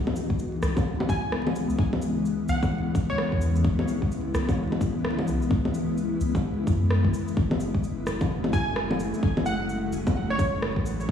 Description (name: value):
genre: future garage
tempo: 129 BPM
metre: 4/4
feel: swing 61% on 16ths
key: C# minor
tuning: A4 = 440 Hz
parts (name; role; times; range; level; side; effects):
- granular cloud pad; sustained chords; 0.0-11.1 s; C#3 to E4; -28 LUFS; left 2 dB; built-in reverb, sidechain pumping
- warm sub bass; bass; 0.0-11.1 s; F#1 to F#2; -30 LUFS; left 1 dB; sidechain pumping
- electronic bongos, shaker and rim click; drums; 0.1-11.1 s; none; -31 LUFS; equal; none
- electronic kick drum; drums; 0.3-11.1 s; none; -25 LUFS; left 1 dB; none
- glassy wavetable pluck; melody; 1.1-3.4, 8.5-10.9 s; C#5 to G#5; -32 LUFS; right 2 dB; chorus, tape echo
room: wet concert hall reverb, RT60 1.8 s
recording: played on a big sound system in a bare room, stone room reverb, vinyl crackle, studio ambience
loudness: -23 LUFS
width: side -8 dB against mid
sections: 0.0-11.1 A section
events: none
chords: 0.0 C#m7; 7.4 F#m9